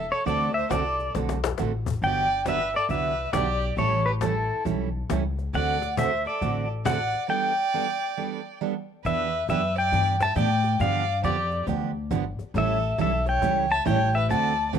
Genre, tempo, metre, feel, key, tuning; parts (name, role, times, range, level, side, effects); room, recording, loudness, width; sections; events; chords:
country, western swing; 137 BPM; 4/4; swing 65% on 8ths; G major; A4 = 440 Hz
pedal steel guitar; melody; 0.0-14.7 s; A4 to A5; -25 LUFS; left 2 dB
rich fiddle; second line; 0.0-14.7 s; E4 to E5; -33 LUFS; right 11 dB
upright bass; bass; 0.0-14.8 s; G1 to A2; -28 LUFS; left 2 dB
cajon; drums; 0.1-14.8 s; -33 LUFS; left 8 dB
picked steel-string acoustic guitar; accompaniment; 0.3-14.8 s; D3 to A4; -29 LUFS; right 10 dB
light reverb, small room ambience; 1960s-style stereo with parts hard left and right; -23 LUFS; side -8 dB against mid
0.0-9.1 A section; 9.1-14.8 B section
drum fill 1.1-1.6
0.3 D7; 2.0 Gmaj7; 3.8 A7; 5.5 D7; 7.3 Gadd9; 9.1 Em7; 10.8 G7; 12.6 A7